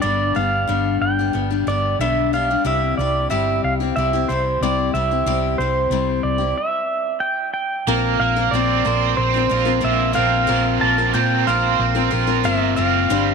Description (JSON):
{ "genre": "folk rock and heartland rock", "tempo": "92 BPM", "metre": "4/4", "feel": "straight", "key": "unclear", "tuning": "A4 = 439 Hz", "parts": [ { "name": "pedal steel guitar", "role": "melody", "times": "0.0-13.3 s", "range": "C5 to A5", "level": "-21 LUFS", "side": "right 2 dB", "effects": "none" }, { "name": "picked steel-string acoustic guitar", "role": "accompaniment", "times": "0.0-13.3 s", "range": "G2 to C5", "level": "-22 LUFS", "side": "left 11 dB", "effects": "none" }, { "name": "hollow-body short-scale fingered electric bass", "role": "bass", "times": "0.0-13.3 s", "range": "F#1 to Bb2", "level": "-23 LUFS", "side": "right 2 dB", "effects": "none" }, { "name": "biting overdriven guitar", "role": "riff", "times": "7.9-13.3 s", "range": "G3 to C5", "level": "-21 LUFS", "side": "right 16 dB", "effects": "tremolo" } ], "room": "light reverb, digital ambience", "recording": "1960s-style stereo with parts hard left and right", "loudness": "-17 LUFS", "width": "side -5 dB against mid", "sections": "0.0-7.9 A section; 7.9-13.3 B section", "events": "stop 6.6-7.9", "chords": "0.0 G; 2.7 C; 7.9 Bbsus2", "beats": "| 0.04 0.69 1.35 2.00 | 2.65 3.31 3.96 4.62 | 5.27 5.93 6.58 7.24 | 7.89 8.54 9.20 9.85 | 10.50 11.15 11.81 12.46 | 13.11" }